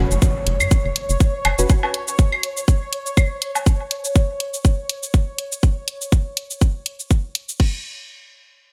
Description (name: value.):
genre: minimal techno.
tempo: 122 BPM.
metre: 4/4.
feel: swing 56% on 16ths.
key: unclear.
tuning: A4 = 440 Hz.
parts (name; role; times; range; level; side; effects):
wavetable chord stab; stabs; 0.0-1.7 s; C#4 to B4; -29 LUFS; equal; delay.
rubbery square bass; bass; 0.0-1.7 s; F#1 to F#2; -23 LUFS; equal; sidechain pumping.
impact; sound effects; 0.0-1.7 s; none; -32 LUFS; equal; none.
bubbling stepped-filter texture; texture; 0.0-5.6 s; C#5; -32 LUFS; equal; chorus, built-in reverb, sidechain pumping.
garage drum kit; drums; 0.1-7.7 s; cabasa, crash cymbal, hi-hat; -28 LUFS; equal; small room ambience.
electronic kick drum; drums; 0.2-7.7 s; none; -18 LUFS; equal; small room ambience.
claves and woodblock; percussion; 0.6-3.6 s; none; -26 LUFS; equal; small room ambience, delay.
room: light reverb.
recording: bright 1980s-style digital production.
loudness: -20 LUFS.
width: mono.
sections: 0.0-7.6 A section; 7.6-8.7 B section.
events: impact 0.0-1.7.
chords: none.